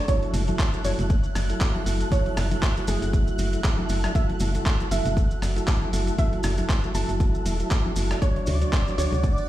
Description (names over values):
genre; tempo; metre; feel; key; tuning
deep house; 118 BPM; 4/4; swing 56% on 16ths; F# minor; A4 = 439 Hz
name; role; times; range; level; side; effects
warbly tape-like pad; sustained chords; 0.0-9.5 s; A3 to F#5; -37 LUFS; right 2 dB; chorus, built-in reverb, sidechain pumping
mellow tonewheel organ; stabs; 0.0-9.2 s; F#3 to C#5; -30 LUFS; right 1 dB; overdrive, fast rotary speaker, vintage 12-bit sampler grit, sidechain pumping, tape echo
soft round pluck; melody; 0.1-9.2 s; G#4 to A5; -33 LUFS; right 3 dB; wide subtle chorus, digital delay
dusty soul sampler-style drum kit; drums; 0.1-9.2 s; handclaps, hi-hat, rim click; -32 LUFS; equal; small room ambience
electronic kick drum; drums; 0.1-9.4 s; none; -23 LUFS; equal; small room ambience
congas; percussion; 0.1-9.2 s; none; -34 LUFS; left 2 dB; sidechain pumping on perc
maracas; percussion; 0.1-9.5 s; none; -41 LUFS; right 2 dB; none
analog string pad; texture; 0.1-9.5 s; D5 to F#6; -39 LUFS; right 2 dB; ensemble chorus, sidechain pumping
woody FM bass; bass; 0.3-9.3 s; E1 to D2; -25 LUFS; equal; none
room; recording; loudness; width
little or no reverb; played on a big sound system in a bare room, stone room reverb; -21 LUFS; side -14 dB against mid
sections
0.0-9.5 A section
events
none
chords
0.1 F#m7; 8.2 Dmaj7